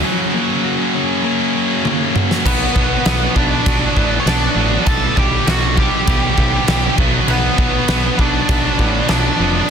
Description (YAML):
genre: quiet-loud alternative rock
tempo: 100 BPM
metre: 4/4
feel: straight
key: B minor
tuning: A4 = 440 Hz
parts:
  - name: twelve-string electric guitar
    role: arpeggios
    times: 0.0-2.5 s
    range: F#3 to F#4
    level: -22 LUFS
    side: left 8 dB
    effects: none
  - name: heavy high-gain guitar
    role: riff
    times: 0.0-9.7 s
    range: F#2 to B3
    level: -20 LUFS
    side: right 15 dB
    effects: distortion
  - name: scooped high-gain guitar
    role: riff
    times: 0.0-9.7 s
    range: F#2 to D4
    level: -21 LUFS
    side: left 16 dB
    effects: distortion
  - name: huge arena drum kit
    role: drums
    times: 1.9-9.2 s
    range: crash cymbal, kick drum, snare drum, toms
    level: -18 LUFS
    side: equal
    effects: none
  - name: octave-fuzz lead guitar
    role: melody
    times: 2.5-9.7 s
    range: B3 to A5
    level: -20 LUFS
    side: equal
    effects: distortion
  - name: growling fingered electric bass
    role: bass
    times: 2.5-9.6 s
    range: E#1 to B1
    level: -20 LUFS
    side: equal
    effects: overdrive
room: little or no reverb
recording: dense, heavily limited modern master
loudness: -13 LUFS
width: side -7 dB against mid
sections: 0.0-2.5 A section; 2.5-9.7 B section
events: break 0.0-2.5; drum fill 1.9-2.5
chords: 0.0 F#; 2.5 Bm; 4.9 G/B; 7.0 Bm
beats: | 0.04 0.65 1.25 1.86 | 2.46 3.06 3.67 4.27 | 4.88 5.48 6.08 6.68 | 7.29 7.89 8.49 9.10 | 9.70